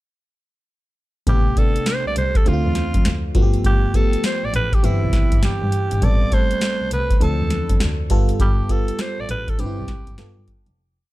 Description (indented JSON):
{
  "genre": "R&B, new jack swing",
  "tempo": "101 BPM",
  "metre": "4/4",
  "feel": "swing 64% on 16ths",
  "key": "A minor",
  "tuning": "A4 = 441 Hz",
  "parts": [
    { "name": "growling alto saxophone", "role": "melody", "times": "1.3-10.5 s", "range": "E4 to D5", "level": "-25 LUFS", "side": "right 2 dB", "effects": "tape echo" },
    { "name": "FM electric piano", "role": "accompaniment", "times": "1.3-10.8 s", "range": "C3 to B4", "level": "-26 LUFS", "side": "equal", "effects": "chorus, phaser" },
    { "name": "rich double bass", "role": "bass", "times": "1.3-10.7 s", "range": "F1 to G2", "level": "-23 LUFS", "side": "equal", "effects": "none" },
    { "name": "booming analog drum machine", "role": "drums", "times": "1.3-10.8 s", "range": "hi-hat, kick drum, snare drum", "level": "-18 LUFS", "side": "equal", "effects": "overdrive" }
  ],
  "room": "small room ambience",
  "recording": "dark, warm production",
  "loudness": "-17 LUFS",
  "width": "side -17 dB against mid",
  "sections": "1.3-10.8 verse",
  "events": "fade-out 8.4-10.8",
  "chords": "1.3 Am9; 2.5 Dm7; 3.3 G9; 4.8 Cmaj7/G; 6.0 Am9; 7.2 Dm7; 8.1 G9; 9.6 Cmaj7/G; 10.2 G9",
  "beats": "| 1.27 1.86 2.46 3.05 | 3.65 4.24 4.83 5.43 | 6.02 6.62 7.21 7.80 | 8.40 8.99 9.59 10.18"
}